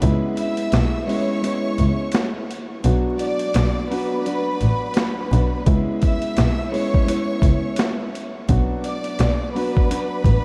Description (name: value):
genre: hip hop, boom-bap hip-hop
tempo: 85 BPM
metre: 4/4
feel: swing 59% on 16ths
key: unclear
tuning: A4 = 440 Hz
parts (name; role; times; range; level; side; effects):
- dark baby grand piano; accompaniment; 0.0-10.4 s; F#3 to F#4; -27 LUFS; equal; cassette tape
- dark double bass; bass; 0.0-10.3 s; A1 to C#2; -22 LUFS; equal; none
- boom bap sampler-style drum kit; drums; 0.0-10.4 s; hi-hat, kick drum, snare drum; -25 LUFS; equal; none
- warm studio violin section; melody; 0.4-10.4 s; B4 to E6; -30 LUFS; equal; none
room: moderate huge ambient reverb, RT60 7.7 s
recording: dreamy mix soaked in reverb, vinyl crackle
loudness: -21 LUFS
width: mono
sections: 0.0-10.4 A section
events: break 0.0-5.7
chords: 0.0 C#m7; 2.8 Bm; 5.7 C#m7; 8.5 Bm